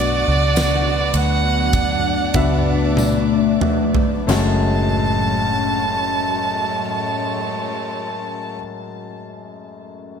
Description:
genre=pop ballad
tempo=44-54 BPM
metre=4/4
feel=straight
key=F# minor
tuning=A4 = 441 Hz
part: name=rich violin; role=melody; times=0.0-8.5 s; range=D5 to A5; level=-22 LUFS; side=right 4 dB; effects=ping-pong delay
part: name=clear studio violin section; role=second line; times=0.0-8.5 s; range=G#3 to F#5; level=-29 LUFS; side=equal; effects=none
part: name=warm concert grand piano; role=accompaniment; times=0.0-10.2 s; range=F#2 to E5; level=-25 LUFS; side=left 4 dB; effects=none
part: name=glassy FM pad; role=sustained chords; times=0.0-8.5 s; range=A2 to F#4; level=-24 LUFS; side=left 3 dB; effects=ensemble chorus, built-in reverb
part: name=vintage muted fingered electric bass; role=bass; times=0.0-8.5 s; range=F#1 to D2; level=-21 LUFS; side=right 1 dB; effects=none
part: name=huge arena drum kit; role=drums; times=0.0-4.6 s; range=kick drum, ride cymbal, snare drum, splash cymbal, toms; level=-23 LUFS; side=right 1 dB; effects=none
part: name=tambourine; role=percussion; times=0.6-4.9 s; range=none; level=-34 LUFS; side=left 4 dB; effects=none
room=light reverb, small room ambience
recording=none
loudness=-16 LUFS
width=side -7 dB against mid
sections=0.0-4.3 A section; 4.3-9.7 B section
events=slowing down 0.0-4.3; drum fill 3.0-4.3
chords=0.0 Bm; 4.3 F#madd9

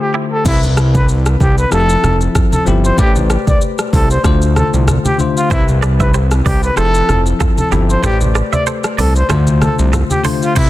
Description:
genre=afrobeats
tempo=95 BPM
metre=4/4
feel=swing 55% on 16ths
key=C major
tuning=A4 = 440 Hz
part: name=breathy trumpet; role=melody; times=0.0-10.7 s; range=E4 to D5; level=-18 LUFS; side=equal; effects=tape echo
part: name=bell-like tine electric piano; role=accompaniment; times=0.0-10.7 s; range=C3 to D5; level=-18 LUFS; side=left 5 dB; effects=none
part: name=direct-recorded clean electric guitar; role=riff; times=0.1-0.3, 5.5-10.7 s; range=E4 to E5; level=-23 LUFS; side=right 6 dB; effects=tape echo
part: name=congas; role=percussion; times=0.4-10.4 s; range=none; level=-21 LUFS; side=right 1 dB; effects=none
part: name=fat analog bass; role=bass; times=0.5-10.7 s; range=F1 to D2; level=-14 LUFS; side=equal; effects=none
part: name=afro-pop drum kit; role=drums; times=0.5-10.7 s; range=crash cymbal, hi-hat, kick drum, rim click, shaker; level=-17 LUFS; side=equal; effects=none
room=little or no reverb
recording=dense, heavily limited modern master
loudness=-11 LUFS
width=side -15 dB against mid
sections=0.5-10.6 A section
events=break 0.0-0.5; kick muted 8.0-10.6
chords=0.5 Cmaj7; 1.7 Fmaj7; 3.0 Am11; 4.2 Dm7; 5.5 Cmaj7; 6.8 Fmaj7; 8.0 Am11; 9.3 Dm7

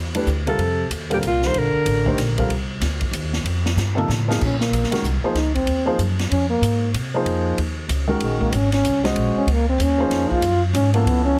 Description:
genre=modal jazz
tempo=189 BPM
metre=3/4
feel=swing 62% on 8ths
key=Bb minor from 4.4 s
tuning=A4 = 440 Hz
part: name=upright bass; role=bass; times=0.0-11.4 s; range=Ab1 to C3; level=-24 LUFS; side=equal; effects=none
part: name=dark baby grand piano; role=accompaniment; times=0.1-11.4 s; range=C3 to Eb5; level=-26 LUFS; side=equal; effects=none
part: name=swinging big-band drum kit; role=drums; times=0.1-11.2 s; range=crash cymbal, hi-hat, kick drum, ride cymbal, snare drum, toms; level=-30 LUFS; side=equal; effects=none
part: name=breathy alto saxophone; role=melody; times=0.5-2.4 s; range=F4 to C5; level=-25 LUFS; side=equal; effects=none
part: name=mellow trombone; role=second line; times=0.5-2.4, 4.4-11.4 s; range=Bb2 to F4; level=-24 LUFS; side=equal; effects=none
room=light reverb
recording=heavily compressed radio sound, multiband compression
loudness=-21 LUFS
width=mono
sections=0.0-4.4 A section; 4.4-11.4 B section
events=drum fill 3.8-4.4; trombone solo 4.4-11.4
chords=0.0 G13sus4; 0.6 F13sus4; 4.4 Bbm11

